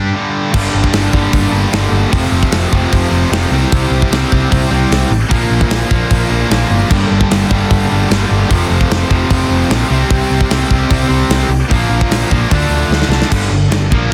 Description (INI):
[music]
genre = hard rock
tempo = 150 BPM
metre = 4/4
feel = straight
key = G dorian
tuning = A4 = 439 Hz
[part]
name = distorted electric guitar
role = riff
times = 0.0-14.1 s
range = F2 to G4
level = -22 LUFS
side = equal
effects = overdrive
[part]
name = tight distorted guitar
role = riff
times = 0.0-14.1 s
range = F2 to G4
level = -23 LUFS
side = equal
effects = distortion
[part]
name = hollow-body short-scale picked electric bass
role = bass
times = 0.0-14.1 s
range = F1 to G2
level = -18 LUFS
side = equal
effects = none
[part]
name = overdriven tonewheel organ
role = sustained chords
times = 0.5-14.1 s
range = F3 to E5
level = -30 LUFS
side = equal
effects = none
[part]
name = overdriven electric guitar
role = riff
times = 0.5-14.1 s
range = F2 to E4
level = -22 LUFS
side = equal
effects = none
[part]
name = tight metal drum kit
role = drums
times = 0.5-14.0 s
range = crash cymbal, hi-hat, kick drum, snare drum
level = -18 LUFS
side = equal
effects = soft clipping on kick
[sound]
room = little or no reverb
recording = dense, heavily limited modern master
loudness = -13 LUFS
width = mono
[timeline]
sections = 0.5-13.3 A section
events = drum fill 12.9-13.3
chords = 0.0 G5; 0.5 Gm; 2.1 F; 3.5 C; 5.3 Bb; 6.9 Gm; 8.5 F; 9.9 C; 11.7 Bb; 12.5 Dm; 13.3 Gm